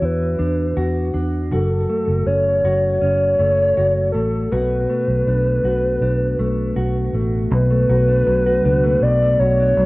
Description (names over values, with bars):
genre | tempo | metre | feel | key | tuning
dream pop | 80 BPM | 4/4 | straight | B minor | A4 = 444 Hz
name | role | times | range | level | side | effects
warbly nostalgic lead | melody | 0.0-9.9 s | A4 to D5 | -19 LUFS | equal | chorus, cassette tape, tape echo
mellow electric guitar | arpeggios | 0.0-9.9 s | F#2 to F#4 | -22 LUFS | left 1 dB | wide subtle chorus, cassette tape, tape echo
vintage muted fingered electric bass | bass | 0.0-9.9 s | F#1 to E2 | -20 LUFS | equal | none
room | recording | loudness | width
moderate studio reverb, RT60 0.5 s | home recording on cassette | -16 LUFS | side -21 dB against mid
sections
0.0-7.5 A section; 7.5-9.9 B section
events
none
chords
0.0 Esus2; 1.5 F#m; 4.5 Bm7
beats
0.02 0.77 | 1.52 2.27 3.02 3.77 | 4.52 5.27 6.02 6.77 | 7.52 8.27 9.02 9.77